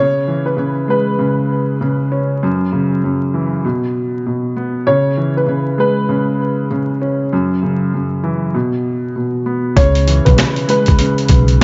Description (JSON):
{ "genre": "hip hop, boom-bap hip-hop", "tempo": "98 BPM", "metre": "4/4", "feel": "swing 61% on 16ths", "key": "C# minor", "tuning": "A4 = 440 Hz", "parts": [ { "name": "dark upright piano", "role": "melody", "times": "0.0-11.6 s", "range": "B4 to C#5", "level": "-20 LUFS", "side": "equal", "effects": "high-pass filter, low-pass filter, delay" }, { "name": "dark grand piano", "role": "accompaniment", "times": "0.0-11.6 s", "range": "F#2 to C#4", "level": "-18 LUFS", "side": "equal", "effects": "cassette tape, high-pass filter, low-pass filter" }, { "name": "upright bass", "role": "bass", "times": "9.8-11.6 s", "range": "B1 to C#2", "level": "-17 LUFS", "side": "equal", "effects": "none" }, { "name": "boom bap sampler-style drum kit", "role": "drums", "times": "9.8-11.6 s", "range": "hi-hat, kick drum, snare drum", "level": "-16 LUFS", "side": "equal", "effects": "none" } ], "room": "light reverb, small room ambience", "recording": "vinyl crackle, nothing above 7.6 kHz", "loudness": "-16 LUFS", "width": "mono", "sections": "0.0-9.8 A section; 9.8-11.6 B section", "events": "none", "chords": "0.0 C#m7; 2.4 F#5; 3.6 N.C.; 4.9 C#m7; 7.3 F#5; 8.5 N.C.; 9.8 C#m7" }